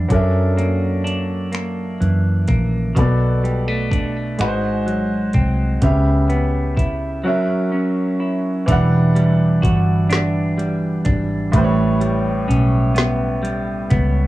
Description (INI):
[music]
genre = slow six-eight R&B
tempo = 42 BPM (dotted quarters)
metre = 6/8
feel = straight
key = unclear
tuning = A4 = 440 Hz
[part]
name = semi-hollow electric guitar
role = second line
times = 0.0-14.3 s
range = F#2 to F#4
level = -20 LUFS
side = right 2 dB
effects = cassette tape, analog delay
[part]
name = clear baby grand piano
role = accompaniment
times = 0.0-14.3 s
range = A2 to F#5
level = -23 LUFS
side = left 1 dB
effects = cassette tape
[part]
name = vintage muted fingered electric bass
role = bass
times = 0.0-14.3 s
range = E1 to F#2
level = -20 LUFS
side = equal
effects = none
[part]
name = smooth R&B drum kit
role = drums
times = 0.1-14.1 s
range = finger snaps, hi-hat, kick drum, snare drum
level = -19 LUFS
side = equal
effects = cassette tape
[sound]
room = moderate booth ambience, RT60 0.2 s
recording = home recording on cassette, small room ambience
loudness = -16 LUFS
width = side -16 dB against mid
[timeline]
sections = 0.0-8.7 A section; 8.7-14.3 B section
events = break 7.2-8.7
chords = 0.1 F#7alt; 3.0 Bm7; 4.4 G#7; 5.8 C#m7b5; 7.2 F#7; 8.7 Em9; 11.5 A9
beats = | 0.10 1.53 | 2.96 4.39 | 5.82 7.25 | 8.68 10.10 | 11.53 12.96